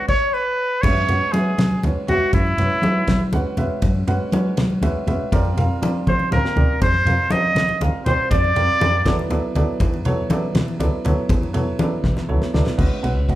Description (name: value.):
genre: electric jazz fusion.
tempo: 80 BPM (dotted quarters).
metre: 6/8.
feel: straight.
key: unclear.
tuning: A4 = 444 Hz.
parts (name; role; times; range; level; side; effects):
trumpet with straight mute; melody; 0.0-3.3, 6.1-9.3 s; E4 to Eb5; -20 LUFS; right 1 dB; none.
warm baby grand piano; accompaniment; 0.0-13.4 s; F#3 to F#5; -25 LUFS; right 2 dB; none.
vintage hollow-body jazz guitar; second line; 0.1-3.3, 6.1-9.3 s; E4 to Eb5; -27 LUFS; equal; none.
damped 70s drum kit; drums; 0.1-13.4 s; crash cymbal, kick drum, ride cymbal, snare drum, toms; -23 LUFS; equal; none.
woody fretless electric bass; bass; 0.8-13.4 s; B1 to F#3; -21 LUFS; equal; none.
congas; percussion; 0.8-12.8 s; none; -26 LUFS; left 1 dB; none.
room: moderate large studio reverb, RT60 0.9 s.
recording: band playing live in one room.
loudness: -17 LUFS.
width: side -14 dB against mid.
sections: 0.8-12.8 A section.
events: drum fill 6.1-6.8, 12.0-12.8.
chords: 0.0 C#7sus4; 0.8 F#9sus4; 5.3 F9sus4; 9.1 E9sus4; 12.8 C#9sus4.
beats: 0.09 | 0.83 1.58 | 2.33 3.08 | 3.82 4.57 | 5.32 6.07 | 6.81 7.56 | 8.31 9.05 | 9.80 10.55 | 11.30 12.05 | 12.79.